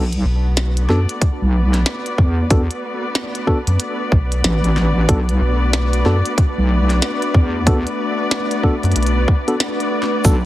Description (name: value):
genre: glitch hop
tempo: 93 BPM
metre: 4/4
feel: swing 62% on 16ths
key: B minor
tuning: A4 = 440 Hz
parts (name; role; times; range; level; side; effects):
- warbly tape-like pad; sustained chords; 0.5-10.5 s; A3 to E5; -26 LUFS; left 3 dB; chorus, built-in reverb, sidechain pumping
- mellow tine electric piano; stabs; 0.0-10.3 s; B3 to A4; -24 LUFS; equal; vintage 12-bit sampler grit, sidechain pumping, tape echo
- wobble bass; bass; 0.0-10.5 s; A1 to E2; -16 LUFS; equal; chorus, overdrive
- muted chamber string section; texture; 0.0-10.5 s; B3 to D5; -24 LUFS; equal; sidechain pumping
- glitchy drum kit; drums; 0.1-10.4 s; hi-hat, snare drum; -23 LUFS; equal; none
- rubbery square bass; bass; 0.2-9.3 s; B1 to F#2; -16 LUFS; equal; none
- electronic kick drum; drums; 1.2-10.4 s; none; -15 LUFS; equal; none
- egg shaker; percussion; 10.2-10.4 s; none; -27 LUFS; right 2 dB; none
room: light reverb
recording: heavily compressed radio sound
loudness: -15 LUFS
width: side -15 dB against mid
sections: 0.0-10.5 A section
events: none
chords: 0.0 Bm7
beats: 0.57 1.22 1.86 | 2.51 3.15 3.80 4.44 | 5.09 5.73 6.38 7.02 | 7.67 8.31 8.96 9.60 | 10.25